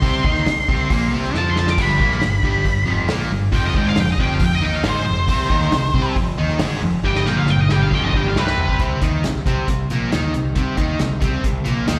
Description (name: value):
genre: blues rock power trio and southern rock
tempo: 137 BPM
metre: 4/4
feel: straight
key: unclear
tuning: A4 = 440 Hz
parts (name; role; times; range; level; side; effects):
- octave-fuzz lead guitar; melody; 0.0-8.8 s; B4 to D6; -25 LUFS; equal; wah, distortion, slapback echo
- distorted electric guitar; riff; 0.0-12.0 s; F2 to F4; -24 LUFS; equal; distortion, slapback echo
- growling picked electric bass; bass; 0.0-12.0 s; F1 to F2; -25 LUFS; equal; overdrive
- vintage drum kit; drums; 0.0-12.0 s; crash cymbal, hi-hat, kick drum, snare drum, toms; -24 LUFS; equal; none
room: small room ambience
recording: live gig heard through the venue's PA, recital hall reverb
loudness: -19 LUFS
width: mono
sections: 0.0-8.8 A section; 8.8-12.0 B section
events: lead electric guitar solo 0.0-8.8; drum fill 1.3-1.8, 7.0-8.8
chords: 0.0 Bbsus24; 1.8 G7; 3.5 F5; 5.3 Cm; 6.2 Fm7; 7.0 G7; 8.8 Bbsus24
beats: | 0.02 0.46 0.90 1.34 | 1.78 2.22 2.66 3.10 | 3.54 3.97 4.41 4.85 | 5.29 5.73 6.17 6.61 | 7.04 7.48 7.92 8.36 | 8.80 9.24 9.68 10.12 | 10.56 11.00 11.44 11.88